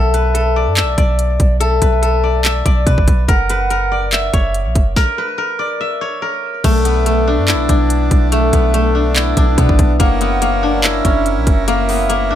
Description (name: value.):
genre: hip hop, trap.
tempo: 143 BPM.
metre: 4/4.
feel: half-time.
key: B minor.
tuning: A4 = 442 Hz.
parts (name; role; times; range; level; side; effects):
steel-string zither; melody; 0.0-12.4 s; A3 to E5; -17 LUFS; left 4 dB; low-pass filter, ping-pong delay.
hollow clarinet-like synth lead; second line; 0.0-12.4 s; D5 to F#5; -23 LUFS; right 5 dB; chorus, ping-pong delay.
warm 808-style bass; bass; 0.0-12.4 s; F#1 to B2; -17 LUFS; equal; none.
trap drum kit; drums; 0.1-12.2 s; crash cymbal, handclaps, hi-hat, kick drum, snare drum; -15 LUFS; equal; none.
accordion; sustained chords; 6.6-12.4 s; F#3 to A#4; -26 LUFS; right 2 dB; none.
room: digital ambience.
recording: none.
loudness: -12 LUFS.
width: side -11 dB against mid.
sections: 0.0-6.6 A section; 6.6-12.4 B section.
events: stop 5.0-6.6.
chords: 0.0 Bm7; 3.3 F#7; 6.6 Bm7; 10.0 F#7.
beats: 0.35 0.77 1.19 | 1.61 2.03 2.45 2.87 | 3.29 3.71 4.12 4.54 | 4.96 5.38 5.80 6.22 | 6.64 7.06 7.48 7.90 | 8.32 8.74 9.16 9.58 | 10.00 10.42 10.84 11.26 | 11.68 12.10.